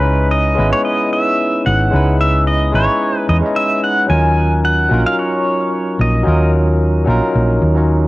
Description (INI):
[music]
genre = sunset chillout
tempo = 111 BPM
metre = 4/4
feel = swing 54% on 16ths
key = Eb phrygian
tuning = A4 = 440 Hz
[part]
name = pedal steel guitar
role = melody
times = 0.0-6.5 s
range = Cb5 to Ab5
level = -17 LUFS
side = equal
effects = cassette tape, plate reverb, analog delay
[part]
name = barky tine electric piano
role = accompaniment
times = 0.0-8.1 s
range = Gb3 to Eb5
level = -17 LUFS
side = equal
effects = auto-pan, cassette tape, plate reverb
[part]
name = hollow-body short-scale fingered electric bass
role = bass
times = 0.0-8.1 s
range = Ab1 to Fb2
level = -14 LUFS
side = equal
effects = none
[sound]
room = moderate booth ambience, RT60 0.2 s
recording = home recording on cassette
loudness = -12 LUFS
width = side -19 dB against mid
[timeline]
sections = 0.0-8.1 A section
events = none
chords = 0.0 Dbm9; 4.1 Ebm9